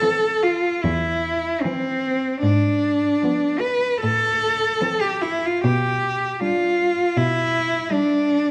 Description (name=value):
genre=classical, lyrical piece for cello ensemble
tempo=73-81 BPM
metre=4/4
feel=rubato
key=A minor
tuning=A4 = 440 Hz
part: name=clear cello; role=melody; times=0.0-8.5 s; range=C4 to B4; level=-22 LUFS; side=equal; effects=none
part: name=dark cello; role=second line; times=0.0-8.5 s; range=B3 to D4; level=-35 LUFS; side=equal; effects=none
part: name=rich cello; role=accompaniment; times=0.0-8.5 s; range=E3 to G3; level=-34 LUFS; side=equal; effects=none
part: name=rich cello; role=bass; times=0.8-7.8 s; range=E2 to B2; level=-26 LUFS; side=equal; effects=none
room=moderate recital hall reverb, RT60 1.5 s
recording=none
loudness=-21 LUFS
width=mono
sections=0.0-8.5 A section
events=none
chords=0.0 Am (rootless); 2.4 G#dim7; 4.0 Am; 5.6 G/B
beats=0.02 0.83 1.63 | 2.42 3.23 4.02 4.81 | 5.63 6.41 7.16 7.92